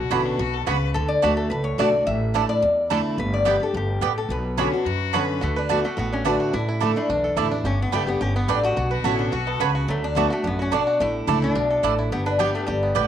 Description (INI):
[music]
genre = bluegrass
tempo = 215 BPM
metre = 4/4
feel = straight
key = unclear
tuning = A4 = 441 Hz
[part]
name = clear fiddle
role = second line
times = 0.0-0.9, 4.6-5.4, 8.9-9.8 s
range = C#4 to B4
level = -30 LUFS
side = left 13 dB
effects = none
[part]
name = picked steel-string acoustic guitar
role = accompaniment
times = 0.0-13.1 s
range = E2 to G4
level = -25 LUFS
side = equal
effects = none
[part]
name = bluegrass banjo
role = melody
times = 0.1-13.1 s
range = F#3 to B4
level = -31 LUFS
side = right 4 dB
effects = none
[part]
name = mandolin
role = stabs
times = 0.1-13.1 s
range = A3 to B5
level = -27 LUFS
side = right 12 dB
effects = none
[part]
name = upright bass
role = bass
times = 0.1-13.1 s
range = F#1 to F#2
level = -28 LUFS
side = equal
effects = none
[part]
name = lap resonator guitar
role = melody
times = 0.9-13.1 s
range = G3 to E5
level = -24 LUFS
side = left 2 dB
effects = none
[sound]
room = light reverb, studio reverb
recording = 1960s-style stereo with parts hard left and right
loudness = -20 LUFS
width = side -10 dB against mid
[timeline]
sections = 0.0-5.4 A section; 5.4-13.1 A section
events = none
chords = 0.0 Bmadd9; 0.9 D; 2.1 Asus4; 3.2 G; 4.3 Bmadd9; 5.4 D; 6.5 Asus4; 7.7 G; 8.8 Bmadd9; 9.9 D; 11.0 Asus4; 12.1 G